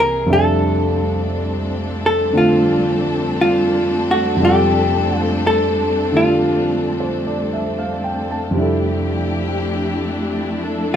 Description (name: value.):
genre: jazz ballad.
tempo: 58 BPM.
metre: 4/4.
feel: swing 68% on 8ths.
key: F major.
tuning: A4 = 441 Hz.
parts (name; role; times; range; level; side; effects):
vintage hollow-body jazz guitar; melody; 0.0-11.0 s; F4 to Bb4; -17 LUFS; equal; none.
warm concert grand piano; accompaniment; 0.0-11.0 s; C2 to A5; -20 LUFS; right 1 dB; none.
warm symphonic string section; sustained chords; 0.0-11.0 s; E3 to A4; -22 LUFS; left 2 dB; none.
room: little or no reverb.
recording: close, detailed microphones.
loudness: -15 LUFS.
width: side -9 dB against mid.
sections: 0.0-8.6 A section; 8.6-11.0 B section.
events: hollow-body jazz guitar solo 8.6-11.0.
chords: 0.3 Fmaj13.